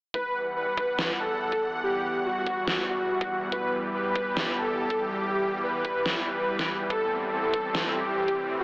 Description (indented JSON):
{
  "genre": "heavy wobble dubstep",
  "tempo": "142 BPM",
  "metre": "4/4",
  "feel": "half-time",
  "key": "E minor",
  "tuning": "A4 = 440 Hz",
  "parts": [
    { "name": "soft supersaw", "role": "melody", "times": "0.1-8.6 s", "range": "F#4 to B4", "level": "-27 LUFS", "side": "equal", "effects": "digital delay" },
    { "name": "supersaw pad", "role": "sustained chords", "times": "0.1-8.6 s", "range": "E2 to F#5", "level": "-31 LUFS", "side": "equal", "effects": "sidechain pumping" },
    { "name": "electronic kick drum", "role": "drums", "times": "0.1-8.4 s", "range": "none", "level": "-33 LUFS", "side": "equal", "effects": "high-pass filter on kick" },
    { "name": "deep dark ambient pad", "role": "texture", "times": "1.0-8.6 s", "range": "G3 to F#5", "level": "-38 LUFS", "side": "equal", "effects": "chorus, built-in reverb, sidechain pumping" },
    { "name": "electronic snare drum", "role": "drums", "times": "1.0-7.8 s", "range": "none", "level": "-29 LUFS", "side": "equal", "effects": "overdrive" }
  ],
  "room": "moderate lush hall reverb, RT60 1.8 s",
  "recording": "AM radio sound",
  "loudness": "-25 LUFS",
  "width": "side -26 dB against mid",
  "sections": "0.1-8.6 A section",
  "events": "none",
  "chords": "0.1 Emadd9; 6.9 Am7"
}